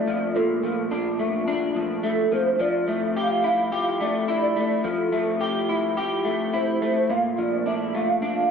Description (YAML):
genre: indie pop, bedroom pop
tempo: 107 BPM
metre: 4/4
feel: straight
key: Bb lydian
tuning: A4 = 440 Hz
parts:
  - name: hollow clarinet-like synth lead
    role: melody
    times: 0.0-8.5 s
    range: A4 to F5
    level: -25 LUFS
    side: right 3 dB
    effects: ensemble chorus
  - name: electric guitar through a small old amp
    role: accompaniment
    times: 0.0-8.5 s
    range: Bb2 to G4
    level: -23 LUFS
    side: left 2 dB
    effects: analog chorus, vibrato effect
room: wet studio reverb, RT60 0.7 s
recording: dark, warm production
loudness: -21 LUFS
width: side -6 dB against mid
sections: 0.0-8.5 A section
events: none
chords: 0.0 Bbmaj7; 2.6 Fmaj9; 7.1 Bbmaj7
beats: | 0.35 0.91 1.48 2.04 | 2.60 3.16 3.72 4.29 | 4.85 5.41 5.97 6.53 | 7.09 7.66 8.22